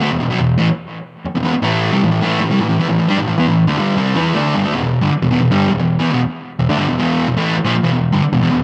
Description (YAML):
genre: rock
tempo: 155 BPM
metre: 4/4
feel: straight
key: E minor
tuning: A4 = 440 Hz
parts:
  - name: fuzz guitar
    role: solo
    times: 0.0-8.6 s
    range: E2 to E4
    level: -16 LUFS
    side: equal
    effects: distortion, analog delay
room: light reverb, digital ambience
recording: none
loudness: -16 LUFS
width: mono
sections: 0.0-4.7 A section; 4.7-8.6 B section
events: none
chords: 0.0 E5; 1.6 A5; 4.7 Em